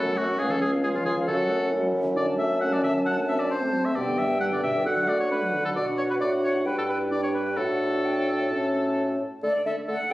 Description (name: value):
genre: quick classical-period movement for wind quintet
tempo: 133 BPM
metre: 4/4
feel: straight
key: D major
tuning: A4 = 439 Hz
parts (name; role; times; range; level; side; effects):
- bright concert flute; melody; 0.0-10.1 s; D5 to A5; -32 LUFS; left 1 dB; none
- clear oboe; second line; 0.0-10.1 s; E#4 to F#5; -28 LUFS; left 1 dB; none
- dark clarinet; accompaniment; 0.0-10.1 s; A3 to F#4; -30 LUFS; right 1 dB; none
- mellow French horn; accompaniment; 0.0-10.1 s; B2 to D4; -32 LUFS; equal; none
- mellow bassoon; bass; 0.0-10.1 s; C#2 to D3; -27 LUFS; equal; none
room: moderate recital hall reverb, RT60 1.2 s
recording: recorded on a phone in the room, club reverb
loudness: -22 LUFS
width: side -17 dB against mid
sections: 0.0-9.4 A section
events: none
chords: 0.4 C#7; 1.3 F#m; 2.2 D/F#; 3.1 D7/F#; 4.0 G; 4.8 D; 5.8 Bm; 6.7 Em7/G; 7.6 D/A; 8.5 A; 9.4 D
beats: | 0.39 0.83 1.28 1.72 | 2.16 2.61 3.06 3.50 | 3.95 4.40 4.85 5.30 | 5.75 6.21 6.66 7.11 | 7.58 8.04 8.51 8.97 | 9.43 9.88